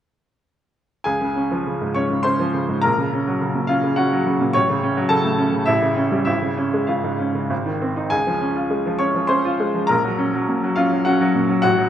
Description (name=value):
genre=classical, virtuoso piano study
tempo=96-107 BPM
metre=3/4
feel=rubato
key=Db major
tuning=A4 = 440 Hz
part: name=bright baby grand piano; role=solo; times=1.0-11.9 s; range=Ab1 to Db6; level=-17 LUFS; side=equal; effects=none
room=moderate concert hall reverb, RT60 1.8 s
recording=none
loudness=-18 LUFS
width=side -10 dB against mid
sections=1.1-11.9 A section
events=none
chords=1.1 Db; 2.8 Gb/Bb; 4.6 Gbm/A; 5.7 A7; 6.3 Db/Ab; 7.5 Ab; 8.1 Db; 9.9 Gb/Bb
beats=| 1.06 1.66 2.25 | 2.83 3.41 3.98 | 4.55 5.12 5.68 | 6.28 6.89 7.51 | 8.12 8.72 9.31 | 9.90 10.48 11.06 | 11.65